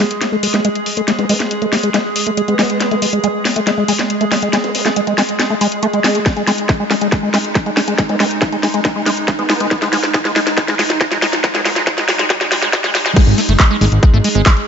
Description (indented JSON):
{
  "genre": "psychedelic trance",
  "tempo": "139 BPM",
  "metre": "4/4",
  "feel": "straight",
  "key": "G# phrygian",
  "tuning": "A4 = 440 Hz",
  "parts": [
    { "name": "evolving wavetable pad", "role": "sustained chords", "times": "0.0-14.7 s", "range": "G#3 to G#4", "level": "-21 LUFS", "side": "right 1 dB", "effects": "chorus, built-in reverb, sidechain pumping" },
    { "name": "liquid acid bass", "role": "riff", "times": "0.0-14.5 s", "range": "G#3 to A3", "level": "-18 LUFS", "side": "equal", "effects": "chorus, auto-pan, sidechain pumping, tape echo" },
    { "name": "drum and bass drum kit", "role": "drums", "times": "0.0-14.7 s", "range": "crash cymbal, handclaps, hi-hat, snare drum", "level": "-17 LUFS", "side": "left 1 dB", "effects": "overdrive" },
    { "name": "vowel-sweep wobble bass", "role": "second line", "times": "1.2-4.8, 8.1-11.7 s", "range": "B3", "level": "-29 LUFS", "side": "right 2 dB", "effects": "wide subtle chorus, sidechain pumping, high-pass filter, tape echo" },
    { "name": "electronic kick drum", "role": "drums", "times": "6.3-14.5 s", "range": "none", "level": "-13 LUFS", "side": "equal", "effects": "overdrive" },
    { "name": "riser", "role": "sound effects", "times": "7.9-13.2 s", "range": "none", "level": "-27 LUFS", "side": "equal", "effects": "none" },
    { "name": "fat analog bass", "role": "bass", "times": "13.3-14.4 s", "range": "F#1 to G#1", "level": "-12 LUFS", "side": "equal", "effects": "none" }
  ],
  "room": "moderate lush hall reverb, RT60 2.0 s",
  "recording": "high-pass filter, nothing above 7.8 kHz",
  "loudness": "-13 LUFS",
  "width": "side -7 dB against mid",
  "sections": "0.0-13.2 A section; 13.2-14.7 B section",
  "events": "build-up 0.0-13.2; drum fill 0.0-13.2; filter sweep on acid bass 0.0-13.2; riser 7.9-13.2; drop 13.2-14.7",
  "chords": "0.0 G#5"
}